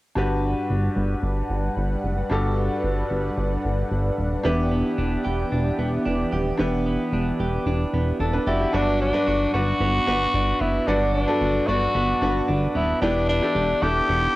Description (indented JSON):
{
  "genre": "pop",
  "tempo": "112 BPM",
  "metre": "4/4",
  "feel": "straight",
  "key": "G major",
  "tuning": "A4 = 439 Hz",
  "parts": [
    { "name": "bright concert grand piano", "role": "accompaniment", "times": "0.2-14.4 s", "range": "G2 to E5", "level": "-26 LUFS", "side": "left 1 dB", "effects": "cassette tape, plate reverb" },
    { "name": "lush unison pad", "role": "sustained chords", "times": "0.2-8.7 s", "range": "E3 to F#5", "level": "-29 LUFS", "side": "equal", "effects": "chorus, cassette tape, plate reverb" },
    { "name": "chorused synth bass", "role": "bass", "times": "0.2-14.3 s", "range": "Eb1 to G1", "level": "-25 LUFS", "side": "equal", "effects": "none" },
    { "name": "direct-recorded clean electric guitar", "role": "riff", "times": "4.4-14.4 s", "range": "F#3 to G4", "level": "-28 LUFS", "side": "right 3 dB", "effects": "wide subtle chorus, cassette tape" },
    { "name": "breathy tenor saxophone", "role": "melody", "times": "8.5-14.4 s", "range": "D4 to G4", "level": "-23 LUFS", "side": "equal", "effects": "cassette tape" }
  ],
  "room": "moderate booth ambience, RT60 0.2 s",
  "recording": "home recording on cassette",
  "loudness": "-20 LUFS",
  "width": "side -18 dB against mid",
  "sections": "0.2-8.7 A section; 8.7-14.4 B section",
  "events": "none",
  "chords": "0.2 Gmaj7; 4.4 Em7"
}